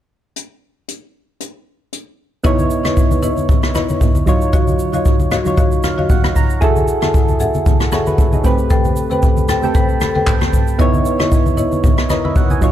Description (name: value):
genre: amapiano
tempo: 115 BPM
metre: 4/4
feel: swing 55% on 16ths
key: unclear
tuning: A4 = 439 Hz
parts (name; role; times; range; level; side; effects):
- jazz brush drum kit; drums; 0.4-12.7 s; handclaps, hi-hat, kick drum, rim click, shaker; -15 LUFS; equal; none
- soft electric-piano-like synth keys; accompaniment; 2.4-12.7 s; F#3 to B5; -19 LUFS; right 3 dB; chorus
- marimba with medium mallets; stabs; 2.4-12.2 s; E4 to G5; -22 LUFS; left 5 dB; tape echo
- congas; percussion; 2.6-12.6 s; none; -22 LUFS; left 1 dB; none
room: small room ambience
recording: dark, warm production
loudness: -12 LUFS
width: side -11 dB against mid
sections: 0.4-2.4 A section; 2.4-12.7 B section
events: synth keys fill 5.6-6.6, 9.2-10.8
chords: 0.4 N.C.; 2.4 C#m9; 4.3 D#m9; 6.6 F#m9; 8.4 Am9; 10.8 C#m9